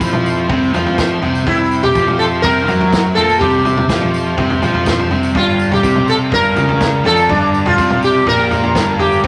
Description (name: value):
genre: psychedelic rock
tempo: 124 BPM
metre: 4/4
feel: straight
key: C mixolydian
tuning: A4 = 438 Hz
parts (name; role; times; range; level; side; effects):
- sitar; melody; 0.0-9.3 s; D4 to Bb4; -18 LUFS; equal; none
- bright tonewheel organ; sustained chords; 0.0-9.3 s; C5 to C6; -28 LUFS; equal; slow rotary speaker
- crunchy overdriven guitar; riff; 0.0-9.3 s; G2 to Bb3; -20 LUFS; equal; none
- fuzz fingered electric bass; bass; 0.0-9.3 s; G1 to Bb2; -23 LUFS; equal; overdrive
- vintage drum kit; drums; 0.0-9.3 s; kick drum, snare drum, toms; -22 LUFS; equal; none
- tambourine; percussion; 0.0-9.2 s; none; -41 LUFS; equal; none
room: wet large studio reverb, RT60 1.4 s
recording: none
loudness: -14 LUFS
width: mono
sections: 0.0-9.3 A section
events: none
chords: 0.0 C; 5.4 Gm7